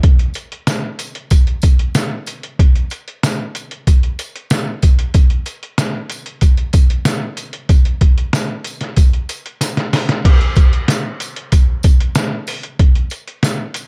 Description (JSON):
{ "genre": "pop", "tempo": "94 BPM", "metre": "4/4", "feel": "straight", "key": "none", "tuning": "none", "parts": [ { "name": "trip hop sampler-style drum kit", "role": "drums", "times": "0.0-13.9 s", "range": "crash cymbal, hi-hat, kick drum, snare drum", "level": "-15 LUFS", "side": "equal", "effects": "none" }, { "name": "tambourine", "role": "percussion", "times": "0.3-13.9 s", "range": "none", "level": "-32 LUFS", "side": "equal", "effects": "none" } ], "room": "little or no reverb", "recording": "dark, warm production", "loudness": "-16 LUFS", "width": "mono", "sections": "0.0-10.2 A section; 10.2-13.9 B section", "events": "drum fill 9.6-10.2", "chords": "none", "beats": "| 0.04 0.68 1.31 1.95 | 2.59 3.23 3.87 4.51 | 5.14 5.78 6.42 7.06 | 7.70 8.33 8.97 9.61 | 10.25 10.88 11.52 12.16 | 12.80 13.44" }